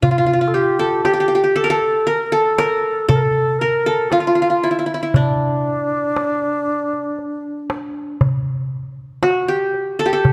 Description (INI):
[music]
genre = Turkish makam ensemble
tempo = 118 BPM (eighths)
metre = 10/8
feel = straight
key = D makam nihavent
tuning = A4 = 439 Hz
[part]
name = qanun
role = melody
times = 0.0-10.3 s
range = D4 to Bb4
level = -20 LUFS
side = equal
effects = none
[part]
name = bright baroque flute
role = second line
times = 0.0-8.2 s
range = D4 to Bb4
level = -22 LUFS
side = equal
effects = none
[part]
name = darbuka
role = percussion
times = 0.0-10.3 s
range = none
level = -21 LUFS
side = equal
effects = none
[sound]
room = moderate recital hall reverb, RT60 1.8 s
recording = dark, warm production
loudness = -18 LUFS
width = mono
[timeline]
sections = 0.0-10.2 A section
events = none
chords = none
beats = | 0.03 0.54 1.05 1.56 2.07 2.58 3.10 3.61 4.12 4.63 | 5.14 5.65 6.16 6.67 7.18 7.69 8.20 8.71 9.22 9.74 | 10.25